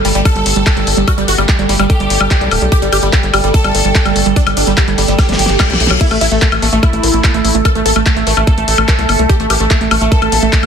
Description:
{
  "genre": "psychedelic trance",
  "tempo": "146 BPM",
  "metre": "4/4",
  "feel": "straight",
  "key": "unclear",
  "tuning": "A4 = 441 Hz",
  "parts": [
    { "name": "supersaw stab", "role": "melody", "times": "0.0-10.7 s", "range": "G3 to A4", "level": "-18 LUFS", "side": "equal", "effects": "phaser, sidechain pumping, tape echo" },
    { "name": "overtone-sweeping drone", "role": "sustained chords", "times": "0.0-10.7 s", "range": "A3 to A4", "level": "-22 LUFS", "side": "right 2 dB", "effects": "chorus, built-in reverb, phaser, sidechain pumping" },
    { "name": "woody wave-folded pluck", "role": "riff", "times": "0.0-10.7 s", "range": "F#3 to Bb4", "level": "-19 LUFS", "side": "moving between left 7 dB and right 13 dB", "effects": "chorus, auto-pan, sidechain pumping, ping-pong delay" },
    { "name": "tight sequencer bass", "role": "bass", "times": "0.0-10.7 s", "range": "D1 to C2", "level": "-16 LUFS", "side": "equal", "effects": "tube saturation" },
    { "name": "big-room dance drum kit", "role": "drums", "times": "0.0-10.7 s", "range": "crash cymbal, handclaps, hi-hat, snare drum, woodblock", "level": "-16 LUFS", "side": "left 3 dB", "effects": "studio reverb" },
    { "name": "warbly tape-like pad", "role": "texture", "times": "0.0-10.7 s", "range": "G4 to A5", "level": "-23 LUFS", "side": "right 1 dB", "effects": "chorus, built-in reverb, sidechain pumping" },
    { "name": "electronic kick drum", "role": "drums", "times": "0.3-10.6 s", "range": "none", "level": "-12 LUFS", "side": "equal", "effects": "studio reverb" },
    { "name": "reverse cymbal", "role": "sound effects", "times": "5.4-6.0 s", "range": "none", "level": "-20 LUFS", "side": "left 6 dB", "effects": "none" }
  ],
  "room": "light reverb, digital ambience",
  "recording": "dense, heavily limited modern master",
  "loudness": "-9 LUFS",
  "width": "side -7 dB against mid",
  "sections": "0.0-10.7 A section",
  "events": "drum fill 5.2-6.0; reverse cymbal 5.4-6.0",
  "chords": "0.0 G5; 6.0 A5"
}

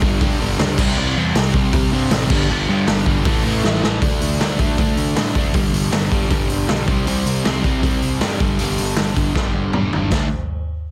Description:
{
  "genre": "punk rock",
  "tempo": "157 BPM",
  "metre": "4/4",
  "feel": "straight",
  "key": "unclear",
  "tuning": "A4 = 440 Hz",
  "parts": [
    { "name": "crunchy overdriven guitar", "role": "riff", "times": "0.0-10.3 s", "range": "G2 to D4", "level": "-23 LUFS", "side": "equal", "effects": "none" },
    { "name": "fuzz picked electric bass", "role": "bass", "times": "0.0-10.3 s", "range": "E1 to A2", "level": "-26 LUFS", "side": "equal", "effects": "overdrive" },
    { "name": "raw garage drum kit", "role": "drums", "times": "0.0-10.2 s", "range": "crash cymbal, hi-hat, kick drum, snare drum, toms", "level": "-21 LUFS", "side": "equal", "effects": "none" }
  ],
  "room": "little or no reverb",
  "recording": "dense, heavily limited modern master",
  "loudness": "-18 LUFS",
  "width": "mono",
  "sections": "0.0-4.0 A section; 4.0-10.1 B section",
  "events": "drum fill 3.6-4.0, 9.4-10.1",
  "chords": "0.0 G5; 0.8 C5; 2.3 G5; 3.3 A5; 4.0 D5; 5.5 G; 6.9 C5; 8.4 G5; 10.1 D5"
}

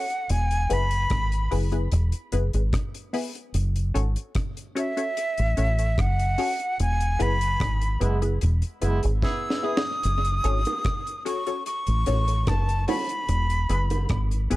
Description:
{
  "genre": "roots reggae",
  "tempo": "74 BPM",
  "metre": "4/4",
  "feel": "straight",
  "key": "unclear",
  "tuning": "A4 = 438 Hz",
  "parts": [
    { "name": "breathy bright jazz flute", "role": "melody", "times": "0.0-14.6 s", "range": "E5 to E6", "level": "-28 LUFS", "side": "equal", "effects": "tape echo" },
    { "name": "filtered dub chord stab", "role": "stabs", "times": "0.0-14.6 s", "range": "B3 to C#5", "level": "-30 LUFS", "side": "left 3 dB", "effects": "phaser" },
    { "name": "deep reggae drum kit", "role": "drums", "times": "0.1-14.6 s", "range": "hi-hat, kick drum, rim click, snare drum", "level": "-30 LUFS", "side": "equal", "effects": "tape echo" },
    { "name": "deep dub fingered electric bass", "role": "bass", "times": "0.3-14.6 s", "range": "E1 to A1", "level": "-23 LUFS", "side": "equal", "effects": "none" },
    { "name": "warm horn section", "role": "second line", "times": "8.0-9.8 s", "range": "G#3 to G#4", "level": "-32 LUFS", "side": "right 4 dB", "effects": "tape echo" },
    { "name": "bongos", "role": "percussion", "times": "10.7-14.1 s", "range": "none", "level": "-33 LUFS", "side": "right 5 dB", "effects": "none" }
  ],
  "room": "small room ambience",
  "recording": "dark, warm production",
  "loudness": "-22 LUFS",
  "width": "side -18 dB against mid",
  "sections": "0.0-14.6 A section",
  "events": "band accent 6.8-10.0; drum fill 9.2-10.0",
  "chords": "0.3 E; 3.5 F#m; 6.8 E; 10.0 F#m; 13.3 E"
}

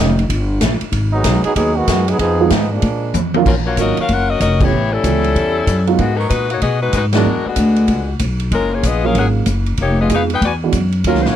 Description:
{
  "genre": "jazz, big band swing",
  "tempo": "190 BPM",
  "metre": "4/4",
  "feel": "swing 63% on 8ths",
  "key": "Eb minor",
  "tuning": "A4 = 440 Hz",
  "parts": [
    { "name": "brilliant trombone section", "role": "second line", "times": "0.0-3.1 s", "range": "Eb3 to Ab4", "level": "-18 LUFS", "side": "right 2 dB", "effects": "none" },
    { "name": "dark upright piano", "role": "accompaniment", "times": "0.0-0.2, 2.4-11.2 s", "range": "Eb3 to Ab4", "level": "-18 LUFS", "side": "right 9 dB", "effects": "none" },
    { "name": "upright bass", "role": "bass", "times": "0.0-11.3 s", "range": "F1 to Cb3", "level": "-17 LUFS", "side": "equal", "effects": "none" },
    { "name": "swinging big-band drum kit", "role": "drums", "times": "0.2-11.3 s", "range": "crash cymbal, hi-hat, kick drum, ride cymbal, snare drum, toms", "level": "-21 LUFS", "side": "equal", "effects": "none" },
    { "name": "edgy saxophone section", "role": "melody", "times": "3.5-11.4 s", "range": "D3 to G#5", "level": "-18 LUFS", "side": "left 5 dB", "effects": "none" }
  ],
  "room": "small room ambience",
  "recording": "none",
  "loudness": "-13 LUFS",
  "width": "side -10 dB against mid",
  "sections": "0.0-3.5 A section; 3.5-11.4 B section",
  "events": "trombone section solo 0.0-3.5; drum fill 3.1-3.5; band accent 4.6, 7.1",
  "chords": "0.0 Eb7; 0.9 Abm7; 2.2 Fm7b5; 2.8 Bb7; 3.5 Ebm9; 4.7 A9; 6.0 Abm7; 7.3 E9; 8.5 Gbmaj9; 9.8 Fm7b5; 10.4 E9"
}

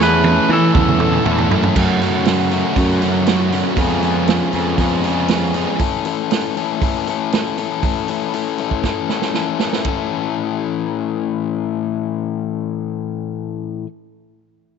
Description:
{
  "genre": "indie rock",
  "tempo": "118 BPM",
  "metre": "4/4",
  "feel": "straight",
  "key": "A major",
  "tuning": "A4 = 440 Hz",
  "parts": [
    { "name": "twangy electric guitar", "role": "melody", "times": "0.0-1.5 s", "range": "A4 to B4", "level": "-19 LUFS", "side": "right 1 dB", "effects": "slapback echo" },
    { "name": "tine electric piano", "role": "second line", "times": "0.0-1.5 s", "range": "E4 to G#4", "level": "-25 LUFS", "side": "right 2 dB", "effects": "medium stereo tremolo" },
    { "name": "overdriven electric guitar", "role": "riff", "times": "0.0-13.9 s", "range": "F#2 to A4", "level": "-20 LUFS", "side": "left 11 dB", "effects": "none" },
    { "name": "sludgy distorted guitar", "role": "riff", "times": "0.0-5.8 s", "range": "E3 to F#4", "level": "-21 LUFS", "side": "right 13 dB", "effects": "overdrive, analog chorus, slapback echo" },
    { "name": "fuzz picked electric bass", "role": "bass", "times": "0.0-5.6 s", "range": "E2 to E3", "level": "-19 LUFS", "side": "right 1 dB", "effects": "overdrive" },
    { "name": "vintage drum kit", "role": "drums", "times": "0.0-10.0 s", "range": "crash cymbal, hi-hat, kick drum, ride cymbal, snare drum, toms", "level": "-21 LUFS", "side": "right 5 dB", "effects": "none" }
  ],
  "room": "light reverb",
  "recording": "1960s-style stereo with parts hard left and right, nothing above 7.8 kHz",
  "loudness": "-16 LUFS",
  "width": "side -6 dB against mid",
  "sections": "0.0-1.8 A section; 1.8-9.9 B section; 9.9-13.9 C section",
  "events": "drum fill 0.0-1.8, 8.8-9.9",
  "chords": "0.0 Amaj7/E; 1.8 F#m; 3.8 C#7/E#; 5.8 A/E; 9.9 A"
}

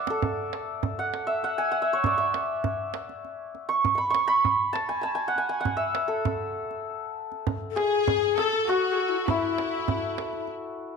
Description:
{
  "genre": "Persian modal ensemble",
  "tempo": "99 BPM",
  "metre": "3/4",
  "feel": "straight",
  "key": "unclear",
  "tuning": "A4 = 440 Hz",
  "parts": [
    { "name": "santur", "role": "melody", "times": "0.0-11.0 s", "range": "E4 to C#6", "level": "-26 LUFS", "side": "right 1 dB", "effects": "none" },
    { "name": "tombak", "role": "percussion", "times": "0.1-10.6 s", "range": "none", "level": "-32 LUFS", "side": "right 5 dB", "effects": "none" },
    { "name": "breathy ney", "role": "second line", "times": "7.7-10.5 s", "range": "E4 to A4", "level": "-28 LUFS", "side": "left 12 dB", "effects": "none" },
    { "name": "rich studio violin section", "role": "second line", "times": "7.8-10.5 s", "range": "E4 to A4", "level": "-30 LUFS", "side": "left 2 dB", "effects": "none" }
  ],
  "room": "wet echo chamber reverb, RT60 1.5 s, studio reverb",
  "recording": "1960s-style stereo",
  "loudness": "-24 LUFS",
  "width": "side -5 dB against mid",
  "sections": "0.0-7.5 A section; 7.5-11.0 B section",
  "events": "drum fill 0.0",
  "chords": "none"
}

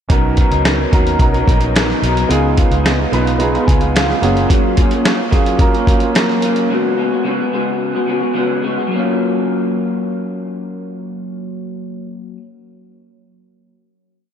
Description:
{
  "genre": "indie pop, bedroom pop",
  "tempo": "109 BPM",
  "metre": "4/4",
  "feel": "straight",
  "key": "F# major",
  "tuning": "A4 = 441 Hz",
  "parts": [
    { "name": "clear upright piano", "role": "accompaniment", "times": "0.1-6.7 s", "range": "A#3 to B5", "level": "-19 LUFS", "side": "right 4 dB", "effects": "cassette tape" },
    { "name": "electric guitar through a small old amp", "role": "accompaniment", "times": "0.1-12.5 s", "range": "B2 to A#4", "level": "-18 LUFS", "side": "left 2 dB", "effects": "wide subtle chorus, warbly pitch drift" },
    { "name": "vintage muted fingered electric bass", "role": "bass", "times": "0.1-4.4 s", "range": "F#1 to D#2", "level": "-18 LUFS", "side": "equal", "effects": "none" },
    { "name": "dusty soul sampler-style drum kit", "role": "drums", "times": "0.1-6.7 s", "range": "hi-hat, kick drum, snare drum", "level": "-16 LUFS", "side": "equal", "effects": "none" }
  ],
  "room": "moderate huge ambient reverb, RT60 4.1 s",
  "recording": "dreamy mix soaked in reverb",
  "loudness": "-13 LUFS",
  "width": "side -8 dB against mid",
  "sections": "0.1-8.9 verse; 8.9-11.1 final chord",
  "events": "upright piano fill 2.9-4.5",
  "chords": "0.1 Bmaj7; 2.3 C#7; 4.2 F#maj7; 6.7 C#7sus4; 8.9 F#maj7"
}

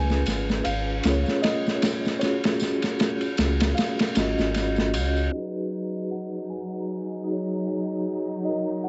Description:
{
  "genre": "trip hop",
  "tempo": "77 BPM",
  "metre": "4/4",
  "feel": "swing 58% on 16ths",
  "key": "unclear",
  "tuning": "A4 = 441 Hz",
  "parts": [
    { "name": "felt-muted upright piano", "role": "melody", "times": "0.0-4.9 s", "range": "Db5 to Ab5", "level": "-37 LUFS", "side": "equal", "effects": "vintage 12-bit sampler grit, cassette tape, tape echo" },
    { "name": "vibraphone with soft mallets", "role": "accompaniment", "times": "0.0-8.9 s", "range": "Gb3 to Eb5", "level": "-30 LUFS", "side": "equal", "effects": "tremolo, cassette tape, tape echo" },
    { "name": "warm sub bass", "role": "bass", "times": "0.0-5.3 s", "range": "Ab1 to Db2", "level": "-29 LUFS", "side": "equal", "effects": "tube saturation" },
    { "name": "crunchy breakbeat drum kit", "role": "drums", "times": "0.1-5.2 s", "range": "ride cymbal, snare drum", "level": "-28 LUFS", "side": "equal", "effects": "vintage 12-bit sampler grit, cassette tape" },
    { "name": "tambourine", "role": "percussion", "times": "0.1-8.9 s", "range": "none", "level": "-43 LUFS", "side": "equal", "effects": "none" },
    { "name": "warm studio string section", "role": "sustained chords", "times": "5.3-8.9 s", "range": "Gb3 to Eb4", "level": "-34 LUFS", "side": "equal", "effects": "cassette tape" },
    { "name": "dark detuned synth bell", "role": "arpeggios", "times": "5.3-8.9 s", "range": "Eb5 to Ab5", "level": "-40 LUFS", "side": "equal", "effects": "chorus, phaser, low-pass filter, cassette tape, tape echo" }
  ],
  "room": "light reverb",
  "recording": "home recording on cassette, low-pass filter, nothing above 7.9 kHz",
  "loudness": "-26 LUFS",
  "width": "mono",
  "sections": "0.0-5.3 A section; 5.3-8.9 B section",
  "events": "filter sweep 5.3-8.9",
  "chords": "0.0 Db7; 2.2 Gb5/Db; 5.3 Abm7"
}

